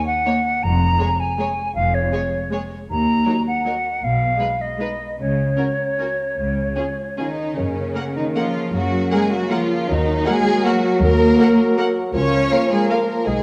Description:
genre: classical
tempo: 143-170 BPM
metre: 3/4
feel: rubato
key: F# major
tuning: A4 = 438 Hz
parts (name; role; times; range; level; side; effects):
- concert flute; second line; 0.0-7.4 s; C#5 to A#5; -24 LUFS; equal; none
- rich studio violin section; melody; 0.3-13.0 s; G#4 to F#5; -35 LUFS; equal; none
- warm studio violin section; second line; 0.3-13.4 s; C#4 to C#5; -25 LUFS; equal; none
- rich studio viola section; accompaniment; 0.3-13.0 s; F#3 to A#4; -30 LUFS; equal; none
- rich studio cello section; bass; 0.6-13.4 s; D#2 to C#4; -25 LUFS; equal; none
- rich studio double bass section; bass; 0.6-13.4 s; E#1 to F#2; -26 LUFS; equal; none
- dark clarinet; second line; 7.6-13.4 s; G#4 to A#4; -30 LUFS; equal; none
- mellow bassoon; accompaniment; 7.6-13.4 s; C#3 to F#3; -28 LUFS; equal; none
- mellow French horn section; sustained chords; 7.6-13.4 s; G#3 to G#4; -29 LUFS; equal; none
room: wet recital hall reverb, RT60 1.4 s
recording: dark, warm production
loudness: -20 LUFS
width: mono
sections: 0.0-7.6 A section; 7.6-13.4 B section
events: none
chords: 0.0 D#m (rootless); 0.6 C#/E#; 2.9 D#m; 4.0 G#m/B; 5.2 N.C.; 7.6 F#; 9.9 D#m; 12.2 A#m/C#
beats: 0.26 | 0.62 1.00 1.38 | 1.75 2.12 2.52 | 2.88 3.25 3.65 | 4.02 4.40 4.80 | 5.19 5.58 6.00 | 6.39 6.78 7.19 | 7.58 7.96 8.36 | 8.74 9.12 9.52 | 9.89 10.27 10.66 | 11.03 11.40 11.79 | 12.15 12.52 12.91 | 13.27

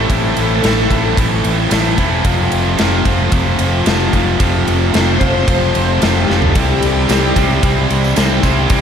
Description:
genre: classic rock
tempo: 111 BPM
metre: 4/4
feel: straight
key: unclear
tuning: A4 = 444 Hz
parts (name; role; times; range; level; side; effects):
- string machine, full ensemble; sustained chords; 0.0-8.8 s; G4 to D6; -21 LUFS; left 2 dB; ensemble chorus
- crunchy overdriven guitar; riff; 0.0-8.8 s; F2 to F4; -19 LUFS; left 9 dB; slapback echo
- tight distorted guitar; riff; 0.0-8.8 s; F2 to C4; -18 LUFS; right 10 dB; distortion, slapback echo
- fingered electric bass; bass; 0.0-8.8 s; E1 to C2; -18 LUFS; equal; none
- big rock drum kit; drums; 0.1-8.8 s; kick drum, ride cymbal, snare drum, toms; -17 LUFS; equal; none
- tambourine; percussion; 6.8-8.6 s; none; -34 LUFS; left 6 dB; none
room: moderate lush hall reverb, RT60 2.6 s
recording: big arena sound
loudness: -11 LUFS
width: side -8 dB against mid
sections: 0.0-8.8 A section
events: string machine solo 0.0-8.8; drum fill 6.3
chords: 0.0 Am; 2.3 F; 6.6 C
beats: | 0.09 0.63 1.17 1.71 | 2.25 2.79 3.33 3.87 | 4.41 4.95 5.49 6.02 | 6.56 7.10 7.63 8.17 | 8.71

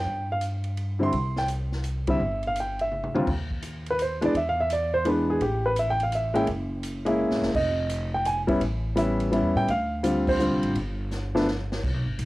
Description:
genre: jazz piano trio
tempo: 168 BPM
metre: 3/4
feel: swing 65% on 8ths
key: C major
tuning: A4 = 440 Hz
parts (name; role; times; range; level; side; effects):
- warm upright piano; melody; 0.0-11.5 s; Eb2 to C6; -24 LUFS; equal; cassette tape
- upright bass; bass; 0.0-12.3 s; F1 to A2; -30 LUFS; equal; none
- swinging big-band drum kit; drums; 0.4-12.3 s; crash cymbal, hi-hat, kick drum, ride cymbal, snare drum, toms; -35 LUFS; equal; cassette tape
room: studio reverb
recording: home recording on cassette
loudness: -23 LUFS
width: side -18 dB against mid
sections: 0.0-3.3 A section; 3.3-11.8 B section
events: band accent 2.0, 10.2; drum fill 2.9-3.3, 7.2-7.5, 11.1-11.8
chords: 0.1 G5; 1.1 C; 3.3 N.C.; 4.3 E7; 5.4 A5; 6.5 F#9; 7.5 F7sus2; 8.6 A7; 9.7 Dm7; 10.8 N.C.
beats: | 0.06 0.42 0.77 | 1.13 1.49 1.84 | 2.20 2.56 2.91 | 3.27 3.63 3.98 | 4.34 4.69 5.05 | 5.41 5.76 6.12 | 6.47 6.83 7.19 | 7.54 7.90 8.26 | 8.61 8.97 9.33 | 9.68 10.04 10.40 | 10.75 11.11 11.47 | 11.83 12.18

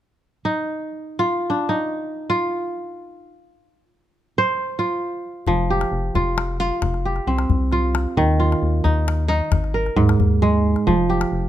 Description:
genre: west african traditional, West African string and xylophone music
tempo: 88 BPM (dotted quarters)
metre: 12/8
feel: straight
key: F minor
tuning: A4 = 440 Hz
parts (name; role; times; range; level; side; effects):
- kora; arpeggios; 0.5-11.5 s; Ab2 to C5; -20 LUFS; right 2 dB; none
- rubbery square bass; bass; 5.5-11.5 s; F1 to Eb2; -22 LUFS; left 1 dB; none
- calabash; percussion; 5.5-11.3 s; none; -24 LUFS; left 6 dB; none
room: little or no reverb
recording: close, detailed microphones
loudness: -18 LUFS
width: side -12 dB against mid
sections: 0.0-5.5 A section; 5.5-11.5 B section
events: kora solo 0.0-5.5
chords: 0.0 N.C.; 5.5 F5; 8.2 Ebsus2; 9.5 Ab5; 10.9 F5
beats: | 0.01 0.70 1.38 2.06 | 2.74 3.42 4.11 4.79 | 5.46 6.14 6.82 7.49 | 8.17 8.85 9.52 10.20 | 10.87

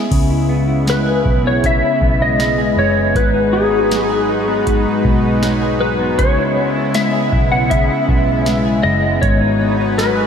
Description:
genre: dream pop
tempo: 79 BPM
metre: 4/4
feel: straight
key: C# minor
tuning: A4 = 440 Hz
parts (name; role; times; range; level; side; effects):
- lush unison pad; sustained chords; 0.0-10.3 s; C#3 to B4; -19 LUFS; equal; chorus, shimmer reverb
- clean electric guitar; arpeggios; 0.0-10.3 s; G#2 to G#4; -20 LUFS; left 2 dB; lush chorus, tape echo, shimmer reverb
- vintage muted picked electric bass; bass; 0.0-10.3 s; F#1 to C#2; -21 LUFS; equal; none
- booming analog drum machine; drums; 0.1-10.2 s; crash cymbal, hi-hat, kick drum, snare drum; -19 LUFS; right 1 dB; none
- clean lap steel guitar; melody; 0.9-10.3 s; G#4 to F#5; -17 LUFS; left 1 dB; analog chorus, tape echo, shimmer reverb
room: wet lush hall reverb, RT60 2.5 s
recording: dreamy mix soaked in reverb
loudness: -13 LUFS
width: side -7 dB against mid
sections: 0.1-10.3 A section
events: none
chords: 0.1 C#m7; 3.2 G#m7; 6.2 C#m7; 9.2 G#m7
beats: | 0.11 0.87 1.63 2.39 | 3.15 3.91 4.67 5.43 | 6.19 6.95 7.71 8.47 | 9.23 9.99

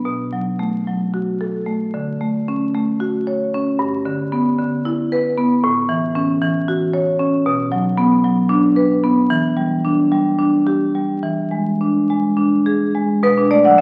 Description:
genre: classical, contemporary piece for solo marimba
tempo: 209-235 BPM (eighths)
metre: 7/8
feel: rubato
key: B minor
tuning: A4 = 440 Hz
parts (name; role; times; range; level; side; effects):
- marimba with medium hard mallets; solo; 0.0-13.8 s; G2 to F#5; -18 LUFS; equal; none
room: wet recital hall reverb, RT60 1.5 s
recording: very old 78 rpm record, vinyl crackle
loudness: -18 LUFS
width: mono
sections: 0.0-13.2 A section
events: none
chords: 0.1 F#m/B; 1.9 Dmaj7; 3.8 G6; 5.6 A6; 7.5 Bm; 9.3 Em7; 11.2 E7; 13.2 Bm7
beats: | 0.05 0.33 0.60 0.87 1.14 1.41 1.68 | 1.94 2.21 2.48 2.75 3.02 3.28 3.55 | 3.81 4.07 4.33 4.60 4.86 5.12 5.38 | 5.64 5.90 6.16 6.43 6.69 6.95 7.21 | 7.47 7.74 7.99 8.25 8.51 8.77 9.04 | 9.31 9.57 9.84 10.11 10.39 10.67 10.95 | 11.23 11.52 11.80 12.09 12.37 12.66 12.94 | 13.22 13.50 13.78

